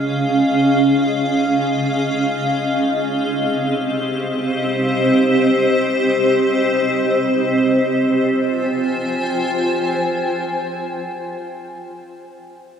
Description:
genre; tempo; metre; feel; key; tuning
ambient; free time; none; none; F minor; A4 = 441 Hz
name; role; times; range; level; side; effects
granular cloud pad; sustained chords; 0.0-11.0 s; C4 to Ab5; -16 LUFS; equal; built-in reverb
room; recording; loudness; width
wet concert hall reverb, RT60 2.1 s; cassette tape; -16 LUFS; side -7 dB against mid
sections
0.0-7.8 A section; 7.8-10.3 B section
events
none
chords
0.0 Db; 2.9 Cm; 7.8 Fmadd9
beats
free time

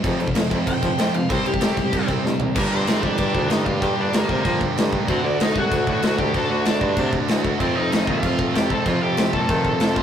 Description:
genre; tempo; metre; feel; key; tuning
punk rock; 190 BPM; 4/4; straight; G minor; A4 = 440 Hz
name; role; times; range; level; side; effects
distorted electric guitar; riff; 0.0-10.0 s; F2 to G4; -29 LUFS; left 2 dB; distortion
thick fuzz guitar; riff; 0.0-10.0 s; F2 to D4; -27 LUFS; equal; distortion
tight distorted guitar; riff; 0.0-10.0 s; F2 to G4; -28 LUFS; right 5 dB; distortion
breathy baritone saxophone; bass; 0.0-10.0 s; C2 to F3; -26 LUFS; equal; none
big rock drum kit; drums; 0.0-10.0 s; crash cymbal, kick drum, snare drum, toms; -23 LUFS; equal; none
overdriven electric guitar; melody; 0.7-10.0 s; Bb3 to C6; -25 LUFS; left 2 dB; none
room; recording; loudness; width
moderate booth ambience, RT60 0.2 s; rough rehearsal-room recording, warm saturation; -18 LUFS; side -9 dB against mid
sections
0.0-2.6 A section; 2.6-10.0 B section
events
overdriven electric guitar solo 0.0-2.6; drum fill 2.2-2.6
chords
0.0 F5; 1.3 C5; 2.6 Gm; 5.1 D; 7.6 F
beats
| 0.04 0.35 0.67 0.98 | 1.30 1.62 1.93 2.25 | 2.56 2.88 3.19 3.51 | 3.83 4.14 4.45 4.77 | 5.08 5.40 5.71 6.03 | 6.34 6.66 6.97 7.29 | 7.60 7.91 8.23 8.54 | 8.86 9.18 9.49 9.81

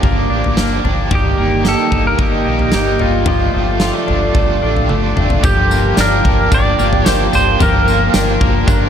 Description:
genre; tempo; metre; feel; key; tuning
dream pop; 111 BPM; 4/4; straight; G minor; A4 = 439 Hz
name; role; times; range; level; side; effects
pedal steel guitar; melody; 0.0-8.9 s; F4 to D5; -19 LUFS; equal; ping-pong delay, shimmer reverb
raw garage guitar; accompaniment; 0.0-8.9 s; G2 to G4; -22 LUFS; right 4 dB; overdrive, tremolo, lush chorus, shimmer reverb
warbly tape-like pad; sustained chords; 0.0-8.9 s; Bb3 to Eb6; -20 LUFS; right 3 dB; chorus, built-in reverb, shimmer reverb
twelve-string electric guitar; arpeggios; 0.0-8.9 s; Eb3 to G4; -21 LUFS; left 7 dB; lush chorus, ping-pong delay, shimmer reverb
deep dub fingered electric bass; bass; 0.0-8.9 s; G1 to Bb1; -18 LUFS; equal; none
huge arena drum kit; drums; 0.0-8.8 s; kick drum, snare drum, tambourine, toms; -17 LUFS; equal; none
room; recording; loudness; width
light reverb, studio reverb; none; -11 LUFS; side -8 dB against mid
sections
0.0-5.4 A section; 5.4-8.9 B section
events
drum fill 4.9-5.4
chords
0.0 Bb/G; 1.1 Eb/G; 3.3 Dm/G; 5.4 Gm7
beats
0.03 0.57 | 1.11 1.65 2.19 2.73 | 3.27 3.81 4.35 4.89 | 5.43 5.97 6.51 7.05 | 7.60 8.14 8.68

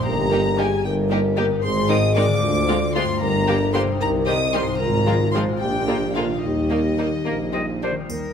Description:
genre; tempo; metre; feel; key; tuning
cinematic, playful, whimsical film cue; 76 BPM (dotted quarters); 6/8; straight; Eb major; A4 = 440 Hz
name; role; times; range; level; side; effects
vibraphone with soft mallets; melody; 0.0-7.8 s; Eb4 to Eb5; -26 LUFS; equal; none
warm chamber violin section; melody; 0.0-7.8 s; Eb5 to Eb6; -27 LUFS; left 2 dB; none
concert harp; arpeggios; 0.0-8.3 s; G2 to Eb5; -29 LUFS; left 11 dB; none
mellow French horn section; sustained chords; 0.1-7.7 s; D4 to Bb4; -27 LUFS; left 6 dB; none
clear tuba; bass; 0.1-7.9 s; G1 to Eb2; -28 LUFS; right 4 dB; none
dark chamber cello section; bass; 0.1-8.3 s; D2 to C3; -28 LUFS; right 3 dB; none
warm chamber double bass section; bass; 0.1-8.3 s; G1 to Eb2; -27 LUFS; right 3 dB; none
warm chamber violin section; second line; 0.3-7.9 s; Bb3 to G4; -29 LUFS; left 2 dB; none
warm chamber viola section; accompaniment; 0.3-7.9 s; D3 to Bb3; -30 LUFS; right 2 dB; none
warm clarinet; second line; 7.3-8.3 s; Bb4 to Eb5; -28 LUFS; left 1 dB; none
triangle; percussion; 8.1-8.3 s; none; -38 LUFS; left 2 dB; none
room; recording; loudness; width
moderate scoring stage reverb, RT60 1.8 s; close, detailed microphones; -18 LUFS; side -7 dB against mid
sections
0.0-8.1 A section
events
none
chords
0.1 Eb/G; 1.6 Ab; 2.4 Dm7b5; 3.2 Gm; 4.0 Cm7; 4.8 Fm/Ab; 5.6 Bb7; 6.4 Eb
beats
| 0.06 0.85 | 1.64 2.42 | 3.21 4.01 | 4.80 5.61 | 6.43 7.26 | 8.09

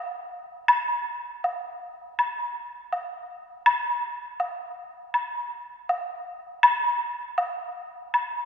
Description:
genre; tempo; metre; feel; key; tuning
chinese traditional; 81 BPM; 4/4; rubato; none; none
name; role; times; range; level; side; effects
woodblock; percussion; 0.7-8.3 s; none; -24 LUFS; equal; none
room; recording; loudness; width
wet concert hall reverb, RT60 2.3 s; minimal, uncompressed stereo recording; -24 LUFS; side -8 dB against mid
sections
0.0-8.5 A section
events
none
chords
none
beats
| 0.69 1.44 2.19 2.93 | 3.66 4.40 5.14 5.88 | 6.63 7.37 8.14

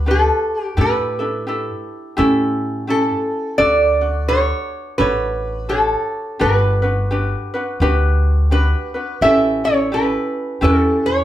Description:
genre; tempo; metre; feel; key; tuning
Hawaiian; 85 BPM; 4/4; swing 60% on 8ths; unclear; A4 = 440 Hz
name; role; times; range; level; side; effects
lap resonator guitar; melody; 0.0-11.2 s; A4 to E5; -18 LUFS; right 1 dB; none
ukulele; accompaniment; 0.0-11.2 s; C#4 to C#5; -20 LUFS; equal; none
upright bass; bass; 0.0-11.2 s; G1 to A2; -20 LUFS; equal; none
room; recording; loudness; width
wet studio reverb, RT60 0.6 s; heard from further back in the room; -15 LUFS; side -12 dB against mid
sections
0.0-11.2 A section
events
none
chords
0.0 Gmaj7; 0.8 A7sus4; 2.2 A7; 3.6 Dmaj7; 6.4 Gmaj7; 9.2 A7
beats
0.07 | 0.77 1.47 2.18 2.88 | 3.58 4.28 4.99 5.69 | 6.39 7.10 7.80 8.50 | 9.21 9.91 10.62

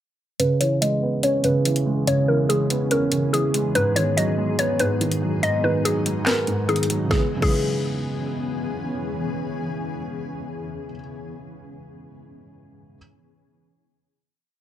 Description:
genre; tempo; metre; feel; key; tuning
hip hop, trap; 143 BPM; 4/4; half-time; C# minor; A4 = 440 Hz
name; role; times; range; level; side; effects
mallet-like synth pluck; melody; 0.4-8.3 s; G#4 to D#5; -23 LUFS; left 1 dB; chorus, low-pass filter
felt-muted upright piano; accompaniment; 0.4-13.0 s; G#2 to C#4; -24 LUFS; right 2 dB; low-pass filter
granular cloud pad; sustained chords; 1.4-10.6 s; E3 to G#4; -30 LUFS; left 2 dB; built-in reverb, low-pass filter
trap drum kit; drums; 0.4-7.5 s; crash cymbal, handclaps, hi-hat, kick drum, snare drum; -25 LUFS; left 1 dB; none
room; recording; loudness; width
light reverb; none; -20 LUFS; side -11 dB against mid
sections
0.4-7.1 breakdown; 7.1-10.5 final chord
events
filter sweep 0.4-7.1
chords
0.4 C#m7; 3.8 G#m7; 7.1 C#m7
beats
| 0.40 0.81 1.23 1.65 | 2.07 2.49 2.91 3.33 | 3.75 4.17 4.59 5.01 | 5.43 5.85 6.27 6.69 | 7.11 7.53 7.95 8.37 | 8.79 9.21 9.63 10.05

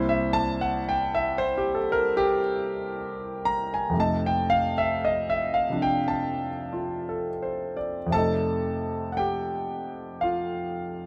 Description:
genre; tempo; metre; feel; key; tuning
solo jazz; 58 BPM; 4/4; swing 69% on 8ths; F mixolydian; A4 = 440 Hz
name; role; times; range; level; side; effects
warm concert grand piano; solo; 0.0-11.1 s; C2 to Bb5; -27 LUFS; equal; none
room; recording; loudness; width
light reverb; none; -27 LUFS; mono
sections
0.0-8.1 A section; 8.1-11.1 B section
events
grand piano solo 0.0-8.1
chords
0.0 C7; 3.9 F7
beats
0.82 1.86 2.90 | 3.95 4.99 6.03 7.07 | 8.11 9.16 10.20

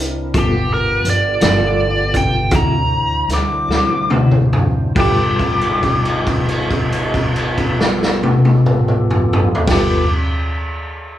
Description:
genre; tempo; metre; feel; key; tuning
slow blues; 46-58 BPM (dotted quarters); 12/8; straight; G mixolydian; A4 = 443 Hz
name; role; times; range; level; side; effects
tonewheel organ; sustained chords; 0.0-10.1 s; B3 to A5; -25 LUFS; left 1 dB; overdrive, chorus vibrato, slow rotary speaker
upright bass; bass; 0.0-10.0 s; G1 to D2; -23 LUFS; equal; none
clean electric guitar; accompaniment; 0.3-10.1 s; D3 to B4; -23 LUFS; left 3 dB; tremolo
raw garage drum kit; drums; 0.3-9.9 s; crash cymbal, hi-hat, kick drum, snare drum, toms; -16 LUFS; equal; none
biting lead guitar; melody; 0.4-10.1 s; G4 to D6; -19 LUFS; equal; overdrive
bright upright piano; second line; 5.0-10.1 s; G4; -26 LUFS; right 5 dB; none
room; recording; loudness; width
light reverb; band playing live in one room, small room ambience; -13 LUFS; side -12 dB against mid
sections
0.0-5.0 A section; 5.0-10.2 B section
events
slowing down 0.0-5.0; drum fill 3.7-5.0; held note 5.0-9.7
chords
0.3 G9; 2.5 D9; 5.0 G9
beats
| 0.34 1.41 2.52 3.70 | 4.96 6.27 7.58 8.89

